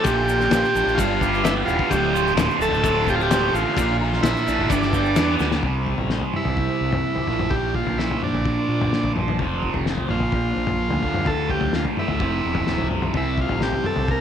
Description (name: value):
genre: psychedelic rock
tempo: 128 BPM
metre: 4/4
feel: straight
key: unclear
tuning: A4 = 440 Hz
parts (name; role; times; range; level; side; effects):
- overdriven combo organ; melody; 0.0-14.2 s; D4 to Bb4; -24 LUFS; right 1 dB; spring reverb, tape echo
- tonewheel organ; sustained chords; 0.0-14.2 s; D3 to D5; -36 LUFS; right 10 dB; none
- fuzz guitar; riff; 0.0-14.2 s; D2 to Bb4; -24 LUFS; right 1 dB; distortion, phaser
- fuzz fingered electric bass; bass; 0.0-14.2 s; D1 to Bb2; -26 LUFS; equal; overdrive
- cloth-damped thuddy drum kit; drums; 0.0-14.2 s; kick drum, ride cymbal, snare drum, toms; -25 LUFS; left 3 dB; none
- egg shaker; percussion; 0.1-5.6 s; none; -41 LUFS; right 15 dB; none
room: light reverb, studio ambience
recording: 1960s-style stereo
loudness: -19 LUFS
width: side -8 dB against mid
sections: 0.0-5.6 A section; 5.6-14.2 B section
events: drum fill 5.4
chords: 0.1 Bb; 1.0 G; 1.9 Dm7; 3.8 Bb; 4.7 G; 5.6 C; 7.3 Bb; 9.4 F; 10.1 Bb; 11.0 Dm; 12.2 F; 13.2 C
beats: | 0.05 0.51 0.98 1.44 | 1.91 2.37 2.84 3.30 | 3.77 4.23 4.70 5.16 | 5.63 6.10 6.57 7.04 | 7.51 7.98 8.45 8.92 | 9.39 9.86 10.33 10.80 | 11.27 11.74 12.21 12.68 | 13.15 13.62 14.09